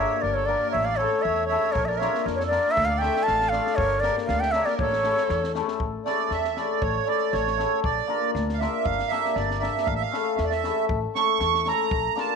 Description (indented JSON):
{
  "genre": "balkan folk, Balkan wedding band",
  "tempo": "118 BPM",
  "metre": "2/4",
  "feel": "swing 54% on 16ths",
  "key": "A phrygian dominant",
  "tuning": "A4 = 440 Hz",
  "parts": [
    { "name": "breathy bright ney", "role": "melody", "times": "0.0-5.5 s", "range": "C#5 to A5", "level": "-23 LUFS", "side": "equal", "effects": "none" },
    { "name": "accordion", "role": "second line", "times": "0.0-12.4 s", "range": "A4 to C#6", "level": "-27 LUFS", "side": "right 13 dB", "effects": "light tremolo tuning, slapback echo" },
    { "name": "cimbalom", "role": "accompaniment", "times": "0.0-12.4 s", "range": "A3 to Bb4", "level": "-28 LUFS", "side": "left 14 dB", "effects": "none" },
    { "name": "upright bass", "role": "bass", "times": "0.0-12.1 s", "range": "G1 to F2", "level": "-31 LUFS", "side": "equal", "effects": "none" },
    { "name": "compact cocktail drum kit", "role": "percussion", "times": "1.8-12.2 s", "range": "kick drum, snare drum", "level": "-35 LUFS", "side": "right 1 dB", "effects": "none" }
  ],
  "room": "light reverb, small room ambience",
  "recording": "1960s-style stereo with parts hard left and right",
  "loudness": "-22 LUFS",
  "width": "side -5 dB against mid",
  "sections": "0.0-5.8 A section; 5.8-12.4 B section",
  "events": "accordion solo 5.8-12.4",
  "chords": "0.0 Gm; 0.7 A; 1.8 Bb; 2.8 Dm; 3.8 Gm; 4.8 A; 7.8 Bb; 8.9 Gm; 9.9 A"
}